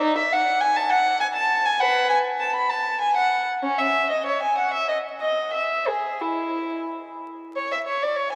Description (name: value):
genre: classical, baroque-style suite movement for unaccompanied violin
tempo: 87-103 BPM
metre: 3/4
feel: rubato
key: E major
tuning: A4 = 440 Hz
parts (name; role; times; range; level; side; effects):
- dark violin; solo; 0.0-8.3 s; C#4 to B5; -23 LUFS; equal; none
room: wet cathedral reverb, RT60 4.8 s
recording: vinyl crackle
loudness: -23 LUFS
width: mono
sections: 0.0-7.6 A section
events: none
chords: none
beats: | 0.01 0.62 1.21 | 1.80 2.40 3.00 | 3.62 4.26 4.89 | 5.54 6.21 6.89 | 7.56 8.19